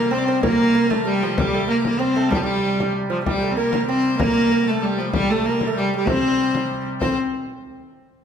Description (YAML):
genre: medieval dance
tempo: 192 BPM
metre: 3/4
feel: straight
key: unclear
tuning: A4 = 442 Hz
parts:
  - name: clear viola da gamba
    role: melody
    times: 0.0-7.2 s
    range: F3 to C4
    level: -20 LUFS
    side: equal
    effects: none
  - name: bright fiddle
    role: second line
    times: 0.0-7.2 s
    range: F4 to D5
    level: -29 LUFS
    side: left 6 dB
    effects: none
  - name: lute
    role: second line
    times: 0.0-7.2 s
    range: F3 to C4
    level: -26 LUFS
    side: right 5 dB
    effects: none
  - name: pipe organ, soft reed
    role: drone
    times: 0.0-7.0 s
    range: C3 to G3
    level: -30 LUFS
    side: left 1 dB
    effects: none
  - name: frame drum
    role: percussion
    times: 0.4-7.2 s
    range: none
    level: -27 LUFS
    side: left 3 dB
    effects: none
room: wet recital hall reverb, RT60 1.9 s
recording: none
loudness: -18 LUFS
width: side -8 dB against mid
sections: 0.0-7.0 A section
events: none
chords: none